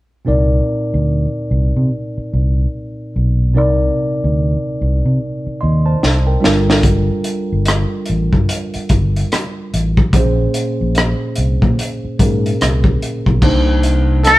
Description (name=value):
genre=R&B, neo-soul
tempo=73 BPM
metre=4/4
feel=swing 61% on 16ths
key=C dorian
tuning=A4 = 440 Hz
part: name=tine electric piano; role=accompaniment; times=0.2-14.4 s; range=Bb2 to C6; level=-19 LUFS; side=equal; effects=none
part: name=fingered electric bass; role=bass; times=0.3-14.4 s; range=G1 to C3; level=-16 LUFS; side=equal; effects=none
part: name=crunchy breakbeat drum kit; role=drums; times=6.0-14.4 s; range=crash cymbal, hi-hat, kick drum, rim click, snare drum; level=-16 LUFS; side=equal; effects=none
part: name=trumpet with metal mute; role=melody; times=14.3-14.4 s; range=Bb4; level=-6 LUFS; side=equal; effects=none
room=light reverb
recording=band playing live in one room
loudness=-13 LUFS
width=side -17 dB against mid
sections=0.3-13.4 A section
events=drum fill 6.0-6.8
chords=0.3 Cm9; 6.4 Gm9; 10.1 Bbm9; 13.4 Cm9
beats=| 0.26 1.09 1.91 2.73 | 3.55 4.37 5.20 6.02 | 6.84 7.66 8.48 9.30 | 10.13 10.95 11.77 12.59 | 13.41 14.24